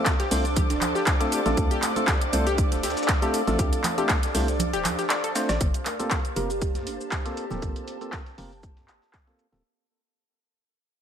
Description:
deep house; 119 BPM; 4/4; swing 54% on 16ths; G minor; A4 = 443 Hz
soft string machine; sustained chords; 0.0-9.6 s; Bb3 to A5; -36 LUFS; equal; ensemble chorus, sidechain pumping
percussive organ stab; stabs; 0.0-9.6 s; A3 to C5; -30 LUFS; equal; chorus, sidechain pumping, dub echo
muted studio violin section; texture; 0.0-5.6 s; D6; -36 LUFS; left 3 dB; sidechain pumping
warbly tape-like pad; texture; 0.0-9.6 s; D4 to A5; -33 LUFS; right 2 dB; chorus, built-in reverb, sidechain pumping
dusty soul sampler-style drum kit; drums; 0.1-9.6 s; hi-hat, shaker, snare drum; -38 LUFS; equal
electronic kick drum; drums; 0.1-9.2 s; -26 LUFS; equal; overdrive
house drum kit; drums; 0.1-9.6 s; handclaps, hi-hat, rim click, shaker; -28 LUFS; equal; overdrive, low-pass filter on hats, low-pass filter on perc, low-pass filter on snare, low-pass filter on room
analog pluck; arpeggios; 0.2-5.5 s; G4 to D5; -32 LUFS; left 4 dB; chorus, sidechain pumping, dub echo
hollow knocking FM bass; bass; 0.3-9.6 s; D1 to G2; -29 LUFS; equal; sidechain pumping
congas; percussion; 0.6-7.6 s; -35 LUFS; right 4 dB
buzzing kalimba; melody; 0.7-1.4, 5.9-7.1 s; D4 to Bb4; -36 LUFS; right 4 dB; tape echo
light reverb, digital ambience; -22 LUFS; side -8 dB against mid
0.0-5.6 A section; 5.6-9.6 B section
drop 0.0-5.6; kick drops out 4.6-5.6; drum fill 5.4; fade-out 5.6-9.6; filter sweep on drum 5.6-9.6
0.0 Dm7; 5.6 Gm11

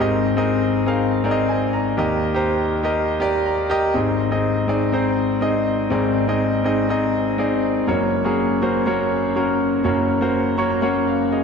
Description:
pop; 122 BPM; 4/4; straight; A4 = 440 Hz
clear concert grand piano; solo; 0.0-11.4 s; Gb1 to Db6; -18 LUFS; left 1 dB; digital delay
wet scoring stage reverb, RT60 1.9 s; dark, warm production; -18 LUFS; side -6 dB against mid
0.0-3.9 A section; 3.9-11.4 B section
grand piano fill 3.2-3.9, 10.3-11.4
0.0 Abadd9; 2.0 Eb; 3.9 Ab; 7.9 Gb

